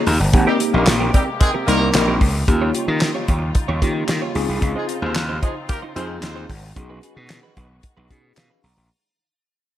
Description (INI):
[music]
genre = early-eighties boogie funk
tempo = 112 BPM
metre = 4/4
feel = straight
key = Ab major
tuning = A4 = 441 Hz
[part]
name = mellow tine electric piano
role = accompaniment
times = 0.0-8.9 s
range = Bb3 to Bb5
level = -24 LUFS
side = left 1 dB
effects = medium stereo tremolo
[part]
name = muted studio string section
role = sustained chords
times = 0.0-8.9 s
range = C3 to G4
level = -31 LUFS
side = left 2 dB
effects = none
[part]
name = clean electric guitar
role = riff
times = 0.0-8.8 s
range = C4 to Db5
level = -28 LUFS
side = right 6 dB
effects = analog chorus
[part]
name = gritty slap bass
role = bass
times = 0.1-8.9 s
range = G1 to Eb3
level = -20 LUFS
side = equal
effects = overdrive
[part]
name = damped 70s drum kit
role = drums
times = 0.1-8.8 s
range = handclaps, hi-hat, kick drum, snare drum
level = -19 LUFS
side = equal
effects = gated reverb
[part]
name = dark horn section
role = second line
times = 0.5-6.4 s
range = Eb3 to C5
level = -24 LUFS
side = left 1 dB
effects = none
[sound]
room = studio ambience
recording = none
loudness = -16 LUFS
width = side -12 dB against mid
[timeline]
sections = 0.3-8.9 A section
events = fade-out 0.3-8.9; tine electric piano fill 8.1-8.9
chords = 0.3 Abmaj9; 2.5 Eb9; 4.4 Dbmaj9; 6.8 B6